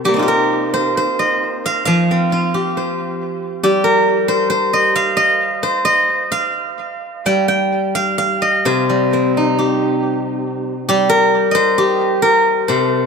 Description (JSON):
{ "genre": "chinese traditional, Chinese solo plucked strings", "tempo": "66 BPM", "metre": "2/4", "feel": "rubato", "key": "C yu mode", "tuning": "A4 = 435 Hz", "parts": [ { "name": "steel-string zither", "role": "solo", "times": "0.0-13.1 s", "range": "C3 to G5", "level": "-14 LUFS", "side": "equal", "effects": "tape echo" } ], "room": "light reverb", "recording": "close, detailed microphones", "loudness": "-14 LUFS", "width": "side -5 dB against mid", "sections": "0.0-13.1 A section", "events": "none", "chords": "none" }